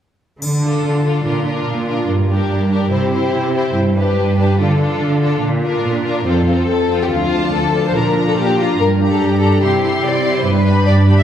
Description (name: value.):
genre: cinematic, heroic adventure film score.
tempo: 144 BPM.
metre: 4/4.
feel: straight.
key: D minor.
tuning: A4 = 441 Hz.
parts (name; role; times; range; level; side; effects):
rich symphonic cello section; bass; 0.4-11.2 s; D2 to D3; -16 LUFS; right 2 dB; none.
triangle; percussion; 0.4-1.2 s; none; -29 LUFS; left 2 dB; none.
rich symphonic violin section; melody; 0.6-11.2 s; A4 to C6; -24 LUFS; left 4 dB; none.
warm studio violin section; second line; 0.6-11.2 s; F4 to E5; -20 LUFS; left 4 dB; none.
warm symphonic viola section; accompaniment; 0.6-11.2 s; C4 to G4; -22 LUFS; right 2 dB; none.
warm French horn section; sustained chords; 7.1-11.2 s; F3 to E4; -20 LUFS; left 2 dB; none.
room: wet scoring stage reverb, RT60 1.7 s.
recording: heard from further back in the room.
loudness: -13 LUFS.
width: side -10 dB against mid.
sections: 0.4-7.1 A section; 7.1-11.2 B section.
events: none.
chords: 0.4 Dm; 1.3 Bb; 2.1 Gm; 2.9 C; 3.8 G; 4.6 Dm; 5.4 Bb; 6.3 F; 7.1 Dm; 7.9 Bb; 8.8 Gm; 9.6 C; 10.5 G.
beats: | 0.42 0.83 1.25 1.67 | 2.09 2.50 2.92 3.34 | 3.75 4.17 4.58 5.00 | 5.42 5.84 6.26 6.69 | 7.11 7.53 7.95 8.37 | 8.79 9.20 9.62 10.04 | 10.45 10.87.